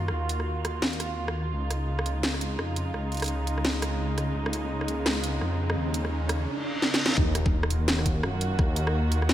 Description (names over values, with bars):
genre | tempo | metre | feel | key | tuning
half-time drum and bass | 170 BPM | 4/4 | swing 60% on 16ths, half-time | Eb minor | A4 = 440 Hz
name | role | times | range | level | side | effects
dark studio string section | sustained chords | 0.0-9.3 s | Db3 to Gb4 | -32 LUFS | right 2 dB | sidechain pumping, low-pass filter
dark detuned saw bass | bass | 0.0-9.3 s | Db2 to Gb2 | -28 LUFS | equal | none
drum and bass drum kit | drums | 0.1-9.3 s | hi-hat, rim click, snare drum | -30 LUFS | equal | overdrive
riser, reverse cymbal and impact | sound effects | 3.9-8.6 s | none | -34 LUFS | equal | none
electronic kick drum | drums | 7.2-8.7 s | none | -25 LUFS | equal | overdrive
room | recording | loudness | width
light reverb | none | -25 LUFS | side -12 dB against mid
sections
0.0-7.2 A section; 7.2-9.3 B section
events
build-up 0.0-7.2; riser 3.9-7.2; reverse cymbal 6.5-7.2; drum fill 6.8-7.2; drop 7.2-9.3; impact 7.2-8.6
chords
0.0 Ebm; 1.5 Db; 7.2 Ebm